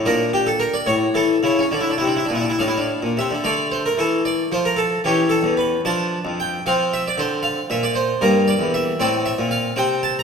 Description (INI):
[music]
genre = classical, baroque-style suite movement for harpsichord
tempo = 69-78 BPM (dotted quarters)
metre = 6/8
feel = rubato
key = D minor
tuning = A4 = 440 Hz
[part]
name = harpsichord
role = solo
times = 0.0-10.2 s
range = E2 to Bb5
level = -17 LUFS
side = equal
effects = none
[sound]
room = moderate concert hall reverb, RT60 2.2 s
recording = none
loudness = -17 LUFS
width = side -6 dB against mid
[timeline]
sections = 0.0-3.4 A section; 3.4-10.2 B section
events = none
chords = 0.1 Bbmaj7; 0.9 A; 1.7 Dm; 5.0 Em6; 5.8 Dm/F; 6.7 F5; 8.2 Edim/G; 9.0 Bbmaj9#11/A